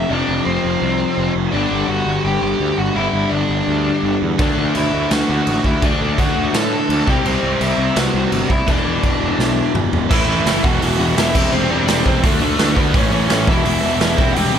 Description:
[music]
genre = punk rock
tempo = 168 BPM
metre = 4/4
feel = straight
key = unclear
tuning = A4 = 442 Hz
[part]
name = bluesy overdriven lead guitar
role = melody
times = 0.0-14.6 s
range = A3 to A5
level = -22 LUFS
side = left 2 dB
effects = distortion
[part]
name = crunchy overdriven guitar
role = riff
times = 0.0-14.6 s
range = E2 to D4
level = -22 LUFS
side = left 11 dB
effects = none
[part]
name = tight distorted guitar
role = riff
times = 0.0-14.6 s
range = E2 to D4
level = -22 LUFS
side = right 14 dB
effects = distortion
[part]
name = fuzz picked electric bass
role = bass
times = 0.0-14.6 s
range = E1 to A2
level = -21 LUFS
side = right 1 dB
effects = overdrive
[part]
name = raw garage drum kit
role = drums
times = 4.4-14.4 s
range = crash cymbal, hi-hat, kick drum, snare drum, toms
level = -19 LUFS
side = right 1 dB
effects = none
[sound]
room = light reverb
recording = none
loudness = -14 LUFS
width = side -8 dB against mid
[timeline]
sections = 0.0-10.1 A section; 10.1-14.6 B section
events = half time 0.0-10.1; drum fill 9.4-10.1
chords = 0.0 F5; 1.5 G5; 4.4 D; 7.1 C; 8.7 E5; 10.1 A5; 10.6 E5; 11.3 C/E; 12.2 D5; 12.9 A; 13.5 E5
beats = | 0.10 0.46 0.82 1.17 | 1.53 1.89 2.25 2.60 | 2.96 3.32 3.68 4.04 | 4.39 4.75 5.11 5.47 | 5.82 6.18 6.54 6.89 | 7.25 7.61 7.97 8.32 | 8.68 9.04 9.39 9.75 | 10.10 10.46 10.81 11.17 | 11.52 11.88 12.23 12.59 | 12.94 13.30 13.65 14.01 | 14.36

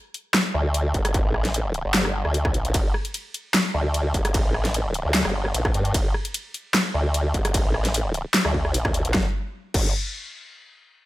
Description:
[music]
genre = heavy wobble dubstep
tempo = 150 BPM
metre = 4/4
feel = half-time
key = G minor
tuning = A4 = 440 Hz
[part]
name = dubstep drum kit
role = drums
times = 0.1-9.8 s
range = crash cymbal, handclaps, hi-hat, ride cymbal, rim click, snare drum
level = -24 LUFS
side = equal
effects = small room ambience
[part]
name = formant-sweep wobble bass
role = bass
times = 0.5-9.9 s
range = G1 to G2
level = -23 LUFS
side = equal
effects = chorus, overdrive
[part]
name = electronic kick drum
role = drums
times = 0.9-9.8 s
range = none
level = -24 LUFS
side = equal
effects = distortion, small room ambience
[sound]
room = digital ambience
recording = none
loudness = -21 LUFS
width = side -17 dB against mid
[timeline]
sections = 0.0-9.1 A section; 9.1-10.7 B section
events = drop 0.0-9.1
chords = none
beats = 0.34 0.74 | 1.14 1.54 1.94 2.34 | 2.74 3.14 3.54 3.94 | 4.34 4.74 5.14 5.54 | 5.94 6.34 6.74 7.14 | 7.54 7.94 8.34 8.74 | 9.14 9.54

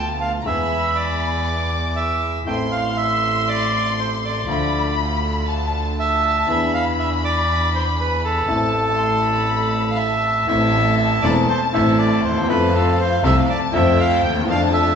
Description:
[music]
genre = tango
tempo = 120 BPM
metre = 4/4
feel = rubato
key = A minor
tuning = A4 = 440 Hz
[part]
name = bandoneon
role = melody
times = 0.0-15.0 s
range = A4 to G5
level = -21 LUFS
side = right 2 dB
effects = none
[part]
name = warm studio violin section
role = second line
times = 0.0-15.0 s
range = F5 to D6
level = -25 LUFS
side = left 3 dB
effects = none
[part]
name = clear upright piano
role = accompaniment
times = 0.0-15.0 s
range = E1 to A4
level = -23 LUFS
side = left 2 dB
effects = none
[part]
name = rich chamber string section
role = stabs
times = 0.0-15.0 s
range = B3 to A4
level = -30 LUFS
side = equal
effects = none
[part]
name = clear double bass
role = bass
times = 0.0-15.0 s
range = E1 to F2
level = -23 LUFS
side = right 1 dB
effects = none
[sound]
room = wet recital hall reverb, RT60 1.6 s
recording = recorded in a church or concert hall, nothing above 8.0 kHz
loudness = -17 LUFS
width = side -7 dB against mid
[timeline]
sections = 0.0-10.5 A section; 10.5-15.0 B section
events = none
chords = 0.5 E; 2.5 Am; 4.5 Dm; 6.5 E7; 8.5 Am; 12.5 F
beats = | 0.46 0.96 1.46 1.96 | 2.47 2.97 3.48 3.98 | 4.48 4.98 5.48 5.98 | 6.48 6.98 7.48 7.97 | 8.47 8.97 9.47 9.98 | 10.48 10.99 11.49 11.99 | 12.49 12.98 13.48 13.98 | 14.47

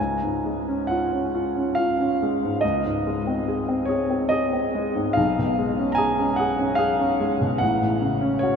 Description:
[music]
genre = classical, romantic nocturne for solo piano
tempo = 65-74 BPM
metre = 3/4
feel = rubato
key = Db major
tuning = A4 = 440 Hz
[part]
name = warm grand piano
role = solo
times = 0.0-8.6 s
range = A1 to Bb5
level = -20 LUFS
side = equal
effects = none
[sound]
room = wet huge ambient reverb, RT60 7.8 s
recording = in a vast, echoing space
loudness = -20 LUFS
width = side -6 dB against mid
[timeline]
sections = 0.0-8.6 A section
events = none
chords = 0.0 Db; 2.6 Ab/Db; 5.2 Db7/Cb; 7.6 Gbm/A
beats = 0.89 1.77 | 2.63 3.47 4.31 | 5.17 5.99 6.80 | 7.62 8.44

